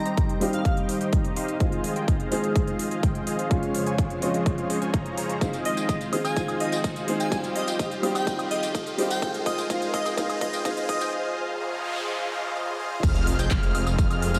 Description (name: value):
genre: EDM, festival progressive house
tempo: 126 BPM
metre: 4/4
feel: straight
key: F minor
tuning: A4 = 440 Hz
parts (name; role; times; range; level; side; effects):
- airy dreamy lead; melody; 0.0-0.7, 5.7-11.0 s; Eb5 to Ab5; -34 LUFS; equal; chorus, digital delay
- dark baby grand piano; accompaniment; 0.0-11.1 s; G3 to Ab4; -32 LUFS; equal; sidechain pumping, digital delay
- lush unison pad; sustained chords; 0.0-14.4 s; F2 to Eb5; -36 LUFS; equal; chorus, sidechain pumping
- dense compressed supersaw; riff; 0.0-14.4 s; Eb4 to Bb5; -33 LUFS; equal; sidechain pumping, low-pass filter, digital delay
- riser, noise sweep and sub drop; sound effects; 3.2-14.4 s; none; -38 LUFS; equal; none
- big-room dance drum kit; drums; 0.1-14.4 s; crash cymbal, handclaps, hi-hat, tambourine, woodblock; -37 LUFS; equal; high-pass filter on hats, high-pass filter on snare, high-pass filter on perc, high-pass filter on cymbals, high-pass filter on room
- electronic kick drum; drums; 0.2-14.1 s; none; -28 LUFS; equal; none
- unison lead; arpeggios; 13.0-14.4 s; F6 to G6; -34 LUFS; equal; ensemble chorus, sidechain pumping, digital delay
- detuned saw bass; bass; 13.0-14.4 s; F1; -28 LUFS; equal; sidechain pumping
room: moderate lush hall reverb, RT60 2.1 s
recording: high-pass filter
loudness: -26 LUFS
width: mono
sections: 0.0-13.0 A section; 13.0-14.4 B section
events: build-up 0.0-13.0; filter sweep on supersaw synth 0.0-13.0; filter sweep 0.0-13.0; riser 3.2-11.1; drum fill 5.4-11.1; break 11.1-13.0; noise sweep 11.1-13.0; drop 13.0-14.4; impact 13.0-14.4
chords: 0.0 Cm; 1.6 Fm7; 3.5 Dbmaj7/F; 5.4 Fm7; 7.3 Cm; 9.2 Fm7